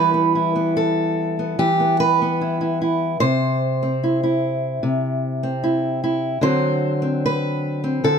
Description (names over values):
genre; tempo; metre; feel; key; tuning
folk, solo fingerstyle acoustic guitar; 74 BPM; 4/4; rubato; unclear; A4 = 440 Hz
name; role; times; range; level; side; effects
fingerpicked steel-string acoustic guitar; solo; 0.0-8.2 s; C3 to C5; -18 LUFS; equal; none
room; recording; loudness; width
light reverb; close, detailed microphones; -18 LUFS; side -6 dB against mid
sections
0.0-8.2 A section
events
none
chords
0.0 Em; 3.2 C; 6.4 D7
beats
0.75 1.58 2.40 | 3.21 4.01 4.81 5.61 | 6.42 7.22 8.03